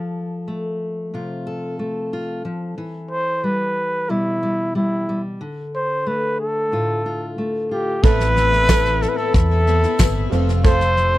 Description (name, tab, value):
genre	indie folk with a building arrangement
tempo	91 BPM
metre	4/4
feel	straight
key	A minor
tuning	A4 = 440 Hz
part	fingerpicked steel-string acoustic guitar	accompaniment	0.0-10.6 s	A2 to A4	-25 LUFS	left 1 dB	none
part	mellow trumpet	melody	3.1-11.2 s	E4 to C5	-20 LUFS	equal	none
part	dark upright piano	accompaniment	8.0-11.2 s	F1 to C5	-30 LUFS	right 6 dB	none
part	picked twelve-string acoustic guitar	accompaniment	8.0-11.2 s	F2 to F4	-26 LUFS	left 10 dB	none
part	pedal harmonium	sustained chords	8.0-11.2 s	A4 to C6	-31 LUFS	right 2 dB	none
part	ukulele	arpeggios	8.0-11.2 s	A4	-26 LUFS	right 12 dB	none
part	hollow-body short-scale fingered electric bass	bass	8.0-11.2 s	F1 to E2	-19 LUFS	equal	none
part	soft brush drum kit	drums	8.0-11.1 s	kick drum, snare drum	-17 LUFS	equal	none
part	tambourine	percussion	8.7-10.1 s	none	-33 LUFS	right 12 dB	none
room	little or no reverb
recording	dry, close 1970s-style studio recording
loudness	-18 LUFS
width	side -16 dB against mid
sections	0.0-8.0 A section; 8.0-11.2 B section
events	none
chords	0.0 F; 2.8 Em; 5.4 Dm; 8.0 Amadd9; 10.3 F